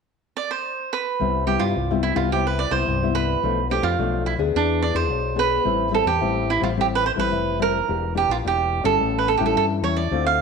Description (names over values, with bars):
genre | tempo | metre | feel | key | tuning
samba and choro | 108 BPM | 4/4 | straight | C major | A4 = 441 Hz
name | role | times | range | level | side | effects
cavaquinho | melody | 0.4-10.4 s | D4 to F5 | -22 LUFS | right 7 dB | none
nylon-string guitar | accompaniment | 1.2-10.4 s | G2 to Ab4 | -25 LUFS | left 11 dB | none
fingered electric bass with an envelope filter | bass | 1.2-10.4 s | E1 to G2 | -26 LUFS | left 1 dB | none
room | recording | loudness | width
moderate echo chamber reverb, RT60 1.2 s, small room ambience | 1960s-style stereo with parts hard left and right | -19 LUFS | side -5 dB against mid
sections
0.0-1.2 A section; 1.2-10.4 B section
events
none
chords
0.0 N.C.; 1.2 Cmaj7; 3.4 Bm7b5; 4.5 E7; 5.7 Am7; 7.9 Em7b5; 9.0 A7